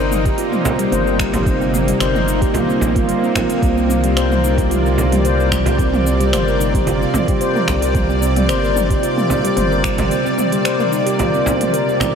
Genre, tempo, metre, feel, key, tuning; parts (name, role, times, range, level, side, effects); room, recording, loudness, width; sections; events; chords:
organic downtempo; 111 BPM; 4/4; swing 53% on 16ths; C minor; A4 = 440 Hz
bowed-like drone; sustained chords; 0.0-12.2 s; C3 to D5; -20 LUFS; equal; built-in reverb, sidechain pumping
handpan; arpeggios; 0.0-12.1 s; G3 to C5; -18 LUFS; equal; tape echo
round analog bass; bass; 0.0-10.1 s; G1 to C2; -20 LUFS; equal; sidechain pumping
organic electronic drum kit; drums; 0.1-12.1 s; cabasa, finger snaps, hi-hat, toms; -23 LUFS; right 1 dB; overdrive
electronic kick drum; drums; 0.3-10.0 s; -20 LUFS; equal; overdrive
frame drum; percussion; 0.7-12.1 s; -27 LUFS; right 2 dB
wet huge ambient reverb, RT60 8.4 s; dreamy mix soaked in reverb; -14 LUFS; side -7 dB against mid
0.0-12.2 A section
0.0 Cm7